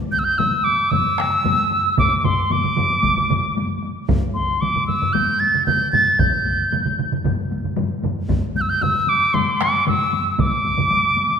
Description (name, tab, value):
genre	japanese traditional, taiko drum ensemble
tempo	114 BPM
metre	4/4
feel	straight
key	D suspended pentatonic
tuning	A4 = 436 Hz
part	wooden piccolo	melody	0.1-11.4 s	C6 to A6	-18 LUFS	equal	none
part	taiko ensemble	percussion	0.1-11.4 s	none	-27 LUFS	left 4 dB	none
part	taiko ensemble	percussion	0.4-10.9 s	none	-26 LUFS	left 4 dB	none
part	taiko ensemble	percussion	0.4-10.9 s	none	-26 LUFS	right 6 dB	none
part	solo taiko drums	percussion	2.0-10.5 s	none	-26 LUFS	right 1 dB	none
room	wet concert hall reverb, RT60 2.1 s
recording	minimal, uncompressed stereo recording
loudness	-17 LUFS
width	side -7 dB against mid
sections	0.0-11.4 A section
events	none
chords	none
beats	0.40 0.93 1.45 | 1.98 2.51 3.04 3.57 | 4.09 4.62 5.15 5.67 | 6.20 6.72 7.25 7.77 | 8.29 8.82 9.34 9.86 | 10.38 10.91